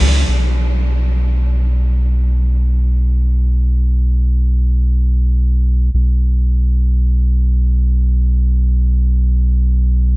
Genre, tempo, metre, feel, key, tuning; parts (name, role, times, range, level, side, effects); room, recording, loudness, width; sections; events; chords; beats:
trip hop; free time; A4 = 440 Hz
soft dub sub bass; bass; 0.0-10.2 s; B1 to C#2; -12 LUFS; equal
little or no reverb; -13 LUFS; side -24 dB against mid
0.3-10.2 A section
free time